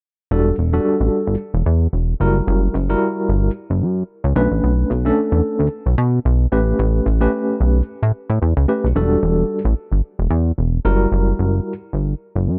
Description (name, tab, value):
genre	early-eighties boogie funk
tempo	111 BPM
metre	4/4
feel	swing 56% on 16ths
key	E dorian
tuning	A4 = 440 Hz
part	tine electric piano	accompaniment	0.3-11.7 s	F#3 to B4	-22 LUFS	equal	medium tremolo
part	chorused synth bass	bass	0.3-12.6 s	E1 to B2	-19 LUFS	equal	none
room	little or no reverb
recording	none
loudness	-18 LUFS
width	mono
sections	0.3-9.0 A section; 9.0-12.6 B section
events	none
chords	0.3 Em11; 2.2 F#7b9; 4.4 Bm9; 6.5 A9; 9.0 Em11; 10.9 F#7b9